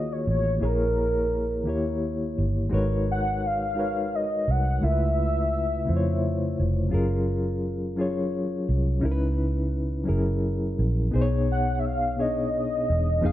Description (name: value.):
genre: R&B.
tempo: 57 BPM (dotted quarters).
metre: 6/8.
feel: straight.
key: unclear.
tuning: A4 = 438 Hz.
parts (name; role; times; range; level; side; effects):
warm velvety synth lead; melody; 0.0-6.6, 11.5-13.3 s; Bb4 to Gb5; -27 LUFS; equal; chorus, slapback echo.
reed electric piano; accompaniment; 0.0-13.3 s; Bb2 to F5; -27 LUFS; left 2 dB; fast tremolo.
vintage muted fingered electric bass; bass; 0.0-13.3 s; Fb1 to F2; -26 LUFS; right 1 dB; none.
room: light reverb, digital ambience.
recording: none.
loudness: -23 LUFS.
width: side -13 dB against mid.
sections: 0.0-13.3 A section.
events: none.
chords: 0.0 Ebm11; 0.6 Bbm7b5; 1.7 Eb7b9; 2.7 Abm11; 4.8 Db7alt; 6.9 Gbmaj9; 9.0 Dbm7; 10.1 Gb7; 11.1 B69.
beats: | 0.61 1.66 | 2.72 3.77 | 4.82 5.87 | 6.93 7.98 | 9.03 10.09 | 11.14 12.19 | 13.24.